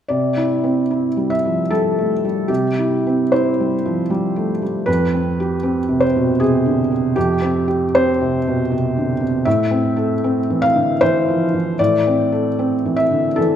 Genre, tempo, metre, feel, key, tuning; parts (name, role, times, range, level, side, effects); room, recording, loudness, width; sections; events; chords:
neoclassical minimalist piano; 77 BPM; 3/4; rubato; C major; A4 = 436 Hz
felt-muted upright piano; solo; 0.1-13.6 s; F2 to F5; -15 LUFS; equal
moderate recital hall reverb, RT60 1.5 s; -15 LUFS; side -9 dB against mid
0.1-13.6 A section
0.1 Cadd9; 4.9 Fmadd9; 9.5 Am